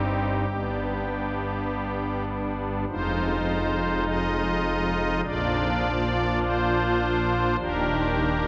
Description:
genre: classical, chorale-style piece for pipe organ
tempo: 51 BPM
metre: 4/4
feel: straight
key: unclear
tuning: A4 = 441 Hz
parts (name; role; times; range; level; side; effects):
- pipe organ, strings celeste; solo; 0.0-8.5 s; Eb1 to Eb5; -26 LUFS; equal; none
room: wet cathedral reverb, RT60 4.7 s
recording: none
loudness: -26 LUFS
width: mono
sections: 0.0-8.5 A section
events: none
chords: 0.5 G; 2.9 Fm7; 5.3 Bb; 7.6 Ebmaj7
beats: 0.50 1.69 | 2.89 4.08 5.26 6.43 | 7.61

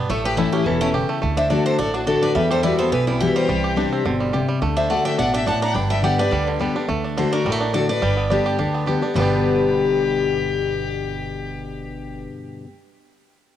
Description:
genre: bluegrass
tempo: 212 BPM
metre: 4/4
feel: swing 54% on 8ths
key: G major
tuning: A4 = 443 Hz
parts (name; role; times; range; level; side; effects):
- bluegrass banjo; melody; 0.0-12.3 s; D3 to G4; -25 LUFS; right 5 dB; none
- picked steel-string acoustic guitar; accompaniment; 0.0-12.7 s; E2 to G4; -21 LUFS; left 4 dB; cassette tape
- upright bass; bass; 0.0-12.2 s; E1 to E2; -28 LUFS; right 3 dB; none
- picked steel-string acoustic guitar; melody; 0.1-12.2 s; E4 to B5; -24 LUFS; right 1 dB; none
- clear fiddle; second line; 0.1-12.2 s; C4 to G5; -29 LUFS; left 5 dB; cassette tape, tape echo
room: light reverb, small room reverb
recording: home recording on cassette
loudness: -18 LUFS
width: side -10 dB against mid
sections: 0.0-6.9 A section; 6.9-9.2 B section; 9.2-11.4 C section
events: none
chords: 0.1 A; 1.2 D; 2.4 Emadd9; 3.5 Csus2; 4.6 D; 5.8 G; 6.9 D; 8.0 G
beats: | 0.10 0.38 0.66 0.94 | 1.23 1.51 1.79 2.07 | 2.35 2.64 2.92 3.20 | 3.48 3.77 4.05 4.33 | 4.62 4.90 5.18 5.47 | 5.75 6.03 6.32 6.60 | 6.88 7.17 7.45 7.74 | 8.02 8.30 8.59 8.87 | 9.16 9.44 9.73 10.01 | 10.29 10.58 10.86 11.15

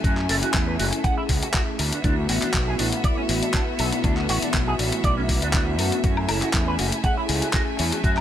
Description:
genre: nu-disco, nu disco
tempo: 120 BPM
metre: 4/4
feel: swing 54% on 16ths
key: F# minor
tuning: A4 = 440 Hz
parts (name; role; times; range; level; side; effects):
- mellow synth brass; accompaniment; 0.0-8.2 s; A3 to G#5; -27 LUFS; left 1 dB; chorus, tape echo
- rich symphonic violin section; sustained chords; 0.0-8.2 s; A3 to G#5; -31 LUFS; left 1 dB; sidechain pumping
- electric guitar with an envelope filter; riff; 0.0-8.1 s; C#4 to F#5; -29 LUFS; right 3 dB; lush chorus, tape echo
- fuzz fingered electric bass; bass; 0.0-8.2 s; F#1 to F#2; -26 LUFS; equal; overdrive
- dusty soul sampler-style drum kit; drums; 0.0-8.2 s; handclaps, hi-hat, woodblock; -27 LUFS; left 2 dB; studio reverb
- electronic kick drum; drums; 0.0-8.1 s; none; -24 LUFS; equal; studio reverb
room: little or no reverb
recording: none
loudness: -20 LUFS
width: side -10 dB against mid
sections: 0.0-8.2 A section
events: none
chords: 0.0 F#m9; 1.8 D69; 6.0 F#m9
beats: | 0.04 0.54 1.04 1.54 | 2.04 2.54 3.04 3.54 | 4.04 4.54 5.04 5.54 | 6.04 6.54 7.04 7.54 | 8.04

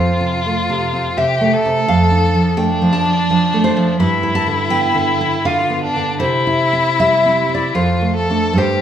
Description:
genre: romantic duo for violin and classical guitar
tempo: 69-88 BPM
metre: 3/4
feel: rubato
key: unclear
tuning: A4 = 441 Hz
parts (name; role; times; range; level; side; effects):
- rich violin; melody; 0.0-8.8 s; D4 to A4; -18 LUFS; left 2 dB; none
- nylon-string guitar; accompaniment; 0.0-8.8 s; F2 to B5; -15 LUFS; right 1 dB; none
room: wet recital hall reverb, RT60 1.5 s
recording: recorded in a church or concert hall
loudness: -13 LUFS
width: side -9 dB against mid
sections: 0.0-8.8 A section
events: none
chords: 0.0 F; 1.9 Dm/F; 4.0 G6; 6.2 C; 7.8 Dm/F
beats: 0.43 1.16 | 1.87 2.56 3.28 | 3.99 4.70 5.45 | 6.21 6.99 7.75 | 8.59

